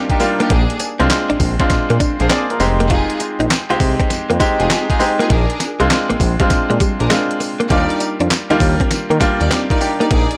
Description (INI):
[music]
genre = R&B, new jack swing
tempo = 100 BPM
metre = 4/4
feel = swing 66% on 16ths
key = Eb major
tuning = A4 = 440 Hz
[part]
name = bright grand piano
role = accompaniment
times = 0.0-10.4 s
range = G3 to F5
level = -21 LUFS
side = equal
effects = none
[part]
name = direct-recorded clean electric guitar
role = riff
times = 0.0-10.3 s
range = G3 to F4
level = -22 LUFS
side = equal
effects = ensemble chorus
[part]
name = warm studio string section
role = stabs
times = 0.1-10.4 s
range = Bb3 to D5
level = -26 LUFS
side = equal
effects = digital delay
[part]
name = crisp 8-bit digital drum machine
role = drums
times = 0.1-10.4 s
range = handclaps, hi-hat, kick drum, snare drum, tambourine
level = -21 LUFS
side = equal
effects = overdrive
[part]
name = smooth synth bass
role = bass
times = 0.5-10.3 s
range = F1 to Eb3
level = -22 LUFS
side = equal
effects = none
[sound]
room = light reverb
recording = none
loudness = -16 LUFS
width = mono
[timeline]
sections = 0.0-10.4 A section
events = none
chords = 0.0 Ebmaj7; 0.5 Bb7; 2.6 Fm7; 5.3 Bb7; 7.7 Ebmaj7